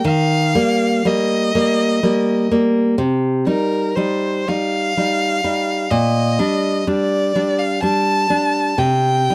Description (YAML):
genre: romantic duo for violin and classical guitar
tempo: 62 BPM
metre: 3/4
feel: uneven beats, rubato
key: unclear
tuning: A4 = 440 Hz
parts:
  - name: clear violin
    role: melody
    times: 0.0-9.3 s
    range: Bb4 to A5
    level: -22 LUFS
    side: equal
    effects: none
  - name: nylon-string guitar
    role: accompaniment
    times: 0.0-9.3 s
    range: Bb2 to Eb4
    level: -19 LUFS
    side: equal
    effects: none
room: little or no reverb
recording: dry, close 1970s-style studio recording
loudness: -18 LUFS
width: mono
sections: 0.0-9.3 A section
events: none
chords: 0.0 Eb; 3.0 Cm; 5.9 Gm/Bb; 8.8 C5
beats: | 0.04 1.06 2.03 | 2.98 3.96 4.96 | 5.91 6.88 7.83 | 8.78